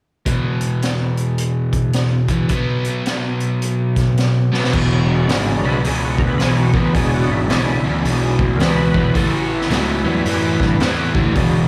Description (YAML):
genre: blues rock power trio and southern rock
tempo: 108 BPM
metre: 4/4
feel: swing 62% on 8ths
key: E mixolydian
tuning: A4 = 439 Hz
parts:
  - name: crunchy overdriven guitar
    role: riff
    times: 0.3-11.7 s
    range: E2 to B3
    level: -20 LUFS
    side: equal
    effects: none
  - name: raw garage drum kit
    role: drums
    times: 0.3-11.5 s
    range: crash cymbal, hi-hat, kick drum, snare drum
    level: -24 LUFS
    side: equal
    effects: none
  - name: fuzz picked electric bass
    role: bass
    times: 4.7-11.7 s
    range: E1 to G2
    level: -23 LUFS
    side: equal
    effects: overdrive
  - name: overdriven tonewheel organ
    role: sustained chords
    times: 5.1-11.7 s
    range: F#3 to B4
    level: -26 LUFS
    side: equal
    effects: slow rotary speaker, chorus vibrato
room: light reverb, small room ambience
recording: live gig heard through the venue's PA, club reverb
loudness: -18 LUFS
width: mono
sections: 0.3-4.7 A section; 4.7-11.7 B section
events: drum fill 4.4; tonewheel organ solo 4.7-11.7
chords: 0.3 E5; 2.5 B5; 4.7 E7; 9.2 A7